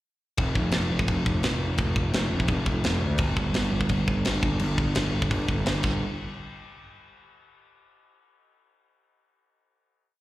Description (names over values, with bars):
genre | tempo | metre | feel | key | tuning
punk rock | 170 BPM | 4/4 | straight | unclear | A4 = 440 Hz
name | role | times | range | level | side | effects
fuzz picked electric bass | bass | 0.4-6.0 s | F1 to D2 | -25 LUFS | equal | overdrive
tight metal drum kit | drums | 0.4-5.9 s | crash cymbal, kick drum, snare drum | -27 LUFS | equal | none
room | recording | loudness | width
little or no reverb | live gig heard through the venue's PA, recital hall reverb | -23 LUFS | side -16 dB against mid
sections
0.4-6.0 chorus; 6.0-7.4 final hit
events
drum fill 5.8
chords
none